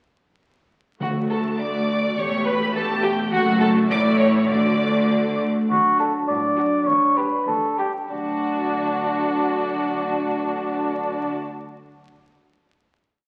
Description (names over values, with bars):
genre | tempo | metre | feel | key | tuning
quick classical-period movement for symphony orchestra | 96-105 BPM | 2/4 | straight | D major | A4 = 440 Hz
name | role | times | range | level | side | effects
warm studio violin section | melody | 1.0-11.3 s | F#5 to D6 | -34 LUFS | equal | none
rich studio violin section | second line | 1.0-11.3 s | F#4 to D5 | -28 LUFS | equal | none
warm studio viola section | accompaniment | 1.0-11.3 s | A3 to G4 | -26 LUFS | equal | none
rich studio cello section | bass | 1.0-11.3 s | D2 to D3 | -35 LUFS | equal | none
rich studio double bass section | bass | 1.0-11.3 s | E1 to D2 | -35 LUFS | equal | none
timpani | percussion | 1.0-1.8 s | D3 | -34 LUFS | equal | none
dark cor anglais | second line | 5.7-11.3 s | D4 to D5 | -24 LUFS | equal | none
mellow French horn section | sustained chords | 5.7-11.3 s | F#3 to D4 | -30 LUFS | equal | none
room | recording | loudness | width
wet scoring stage reverb, RT60 1.8 s | very old 78 rpm record, vinyl crackle | -21 LUFS | mono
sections
1.0-5.7 A section; 5.7-8.1 coda; 8.1-10.6 final chord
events
slowing down 5.1-8.1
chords
1.0 D; 2.2 A5/E; 3.3 F#m; 3.9 A; 4.5 D; 6.9 G5/D; 8.1 D